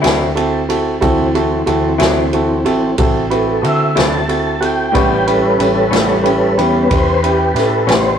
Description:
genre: slow blues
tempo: 61 BPM (dotted quarters)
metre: 12/8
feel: straight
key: unclear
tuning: A4 = 440 Hz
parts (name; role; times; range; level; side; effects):
- clear baby grand piano; accompaniment; 0.0-8.1 s; C4 to B4; -16 LUFS; right 2 dB; none
- electric guitar through a small old amp; accompaniment; 0.0-8.1 s; A2 to E4; -20 LUFS; left 4 dB; tremolo
- vintage muted fingered electric bass; bass; 0.0-8.2 s; A1 to D3; -22 LUFS; equal; none
- vintage drum kit; drums; 0.0-8.0 s; kick drum, ride cymbal, snare drum; -20 LUFS; equal; none
- tonewheel organ; sustained chords; 1.0-8.2 s; E3 to A5; -16 LUFS; equal; slow rotary speaker, chorus vibrato
room: moderate stone room reverb, RT60 1.3 s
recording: rough rehearsal-room recording, tube saturation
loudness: -12 LUFS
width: side -8 dB against mid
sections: 0.0-8.2 A section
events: tonewheel organ solo 0.0-8.2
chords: 0.0 D9; 4.9 A9

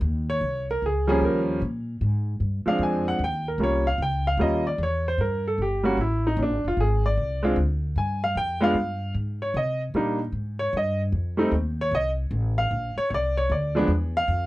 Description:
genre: jazz piano trio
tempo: 151 BPM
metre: 4/4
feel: swing 64% on 8ths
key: unclear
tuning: A4 = 440 Hz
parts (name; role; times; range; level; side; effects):
- upright bass; bass; 0.0-14.5 s; F1 to C3; -26 LUFS; equal; none
- clear baby grand piano; melody; 0.3-14.5 s; F3 to Ab5; -24 LUFS; equal; none
room: light reverb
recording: dry, close 1970s-style studio recording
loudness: -22 LUFS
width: side -17 dB against mid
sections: 0.0-14.5 A section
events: grand piano solo 0.0-14.5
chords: 0.0 Eb7; 1.6 Bb7; 3.2 Eb7; 4.8 Edim7; 6.4 Bb7 (rootless); 8.0 G7(no3); 9.5 Cm7; 11.1 F7; 12.7 Bbmadd9; 13.5 Dmadd9

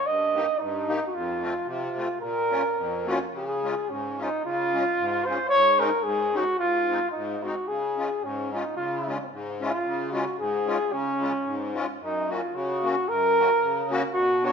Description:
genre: alpine folk, alpine dance band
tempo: 111 BPM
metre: 2/4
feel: swing 55% on 8ths, rubato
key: Bb minor, Db major from 3.3 s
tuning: A4 = 439 Hz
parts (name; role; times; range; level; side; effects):
- mellow flugelhorn; melody; 0.0-14.5 s; Db4 to Eb5; -24 LUFS; equal; none
- musette accordion; accompaniment; 0.1-14.5 s; F2 to G4; -31 LUFS; left 2 dB; none
room: moderate scoring stage reverb, RT60 1.9 s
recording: minimal, uncompressed stereo recording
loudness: -23 LUFS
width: side -6 dB against mid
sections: 0.0-3.3 A section; 3.3-12.0 B section; 12.0-14.5 C section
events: none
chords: 0.1 Eb/G; 1.1 F; 2.2 Bbm; 3.3 Db; 5.5 Absus4; 6.6 Ab; 7.7 Db; 12.0 F#

